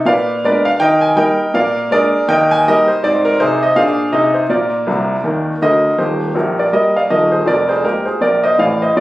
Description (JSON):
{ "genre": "jazz, stride piano", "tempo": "162 BPM", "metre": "4/4", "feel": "swing 59% on 8ths", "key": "Eb major", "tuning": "A4 = 441 Hz", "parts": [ { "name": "warm upright piano", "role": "solo", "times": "0.1-9.0 s", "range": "Eb1 to Ab5", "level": "-12 LUFS", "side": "equal", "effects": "none" } ], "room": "moderate studio reverb, RT60 0.6 s", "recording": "recorded on a phone in the room, studio reverb, compression", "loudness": "-12 LUFS", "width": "side -17 dB against mid", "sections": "0.0-6.0 A section; 6.0-9.0 A section", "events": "upright piano fill 4.9-6.0", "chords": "0.1 Bb7b9; 0.8 Eb; 1.5 Bb7; 2.3 Eb; 3.0 Ab; 4.5 Bb; 6.0 Eb; 7.5 Bb7/F", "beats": "| 0.06 0.43 0.80 1.17 | 1.54 1.91 2.28 2.65 | 3.02 3.39 3.76 4.13 | 4.50 4.87 5.24 5.61 | 5.99 6.36 6.73 7.10 | 7.47 7.84 8.21 8.58 | 8.95" }